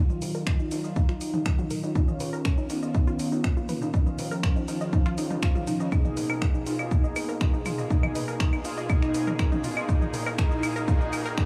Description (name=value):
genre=melodic techno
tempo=121 BPM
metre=4/4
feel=straight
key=unclear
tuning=A4 = 440 Hz
part: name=unison lead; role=melody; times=0.0-11.5 s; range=F3 to F4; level=-35 LUFS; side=equal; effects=analog chorus, sidechain pumping, digital delay
part: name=unison pluck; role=arpeggios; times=0.0-11.4 s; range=Eb4 to F5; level=-37 LUFS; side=equal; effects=sidechain pumping, digital delay
part: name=brassy analog pad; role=stabs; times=0.0-11.5 s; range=Bb2 to Ab4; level=-35 LUFS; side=equal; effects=chorus, sidechain pumping, digital delay
part: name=house drum kit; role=drums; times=0.1-11.5 s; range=claves, finger snaps, hi-hat, shaker, toms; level=-37 LUFS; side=equal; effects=overdrive
part: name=fat analog bass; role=bass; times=0.2-11.3 s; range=Eb1 to Eb2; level=-45 LUFS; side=equal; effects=none
part: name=electronic kick drum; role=drums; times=0.5-11.5 s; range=none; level=-26 LUFS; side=equal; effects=overdrive
part: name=riser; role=sound effects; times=9.5-11.5 s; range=none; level=-44 LUFS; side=equal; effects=none
room=light reverb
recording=small room ambience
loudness=-26 LUFS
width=mono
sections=0.0-11.5 A section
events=build-up 0.0-11.5; filter sweep on synth pluck 0.0-11.5; filter sweep on analog synth lead 0.0-11.5; filter sweep on analog synth pad 0.0-11.5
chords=0.0 Ebmadd9; 2.0 Dbadd9; 5.9 Abmadd9; 9.9 Gb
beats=0.47 0.96 1.46 | 1.96 2.45 2.95 3.44 | 3.94 4.43 4.93 5.43 | 5.92 6.42 6.91 7.41 | 7.91 8.40 8.90 9.39 | 9.89 10.38 10.88 11.38